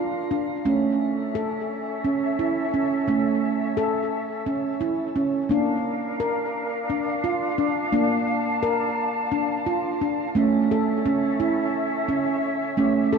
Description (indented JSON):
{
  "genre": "world meditative, meditative tuned percussion",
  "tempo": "173 BPM (eighths)",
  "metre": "7/8",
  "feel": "straight",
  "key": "unclear",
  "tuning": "A4 = 440 Hz",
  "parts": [
    { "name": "large flute ensemble", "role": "sustained chords", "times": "0.0-13.2 s", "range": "C#4 to A5", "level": "-28 LUFS", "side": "left 1 dB", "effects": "shimmer reverb" },
    { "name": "handpan", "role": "arpeggios", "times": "0.0-13.2 s", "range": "A3 to Bb4", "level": "-22 LUFS", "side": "right 2 dB", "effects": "diffuse ambient delay, shimmer reverb" }
  ],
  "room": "wet scoring stage reverb, RT60 1.6 s",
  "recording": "dark, warm production",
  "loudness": "-22 LUFS",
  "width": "side -5 dB against mid",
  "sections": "0.0-10.3 A section; 10.3-13.2 B section",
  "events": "none",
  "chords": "0.0 Bb; 0.7 A; 5.5 Bb; 10.3 A"
}